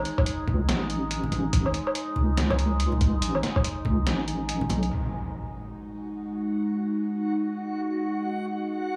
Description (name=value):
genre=deep dubstep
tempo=142 BPM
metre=4/4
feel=swing 61% on 16ths, half-time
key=unclear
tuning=A4 = 440 Hz
part: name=overtone-sweeping drone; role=sustained chords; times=0.0-9.0 s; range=G#3 to D#4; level=-33 LUFS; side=equal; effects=chorus, built-in reverb
part: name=deep soft wobble bass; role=bass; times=0.0-4.9 s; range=A1 to C#2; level=-28 LUFS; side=equal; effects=chorus
part: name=trip hop sampler-style drum kit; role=drums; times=0.1-4.9 s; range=hi-hat, snare drum, woodblock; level=-32 LUFS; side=equal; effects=overdrive, small room ambience
part: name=electronic kick drum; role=drums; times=0.2-4.0 s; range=none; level=-28 LUFS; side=equal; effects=overdrive, small room ambience
part: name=congas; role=percussion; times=0.5-4.8 s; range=none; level=-36 LUFS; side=equal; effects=dub echo
part: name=impact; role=sound effects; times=4.9-6.6 s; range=none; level=-36 LUFS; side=equal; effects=none
part: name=backwards swelling texture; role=texture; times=6.1-9.0 s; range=F#4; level=-38 LUFS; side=equal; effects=built-in reverb
room=light reverb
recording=small room ambience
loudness=-27 LUFS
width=mono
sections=0.0-4.9 A section; 4.9-9.0 B section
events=kick drops out 4.5-4.9; impact 4.9-6.6; filter sweep on synth drone 4.9-9.0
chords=0.0 A; 4.9 G#5